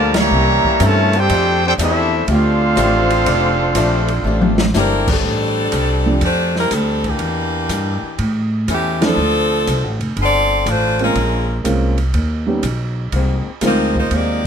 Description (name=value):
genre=jazz, big band swing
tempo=122 BPM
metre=4/4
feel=swing 68% on 8ths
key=F major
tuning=A4 = 438 Hz
part: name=clear trumpet section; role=melody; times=0.0-4.8 s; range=D4 to Bb5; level=-18 LUFS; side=equal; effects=none
part: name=bright trombone section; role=second line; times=0.0-4.8 s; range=D3 to G4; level=-18 LUFS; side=right 1 dB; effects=none
part: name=picked swing-style acoustic guitar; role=accompaniment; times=0.0-5.1, 13.1-14.5 s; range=Ab2 to A4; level=-23 LUFS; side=left 8 dB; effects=none
part: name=upright bass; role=bass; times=0.0-14.5 s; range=F1 to A2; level=-18 LUFS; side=equal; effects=none
part: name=open jazz drum kit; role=drums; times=0.1-14.3 s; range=crash cymbal, hi-hat, kick drum, ride cymbal, snare drum, toms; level=-24 LUFS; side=right 1 dB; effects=none
part: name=bright saxophone section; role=melody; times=4.8-14.5 s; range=E3 to D5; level=-18 LUFS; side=left 1 dB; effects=none
part: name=warm baby grand piano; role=accompaniment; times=6.1-14.4 s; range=F3 to G4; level=-20 LUFS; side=right 2 dB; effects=none
room=little or no reverb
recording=close, detailed microphones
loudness=-14 LUFS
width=side -7 dB against mid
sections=0.0-5.2 A section; 5.2-14.5 B section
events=band accent 0.1, 5.0, 8.9; drum fill 4.2-4.7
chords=0.3 C7b9; 1.3 F69; 7.2 Em7b5; 8.2 A; 9.2 Dm7; 11.2 Bbm9; 12.1 Ebaug7; 13.1 Ab69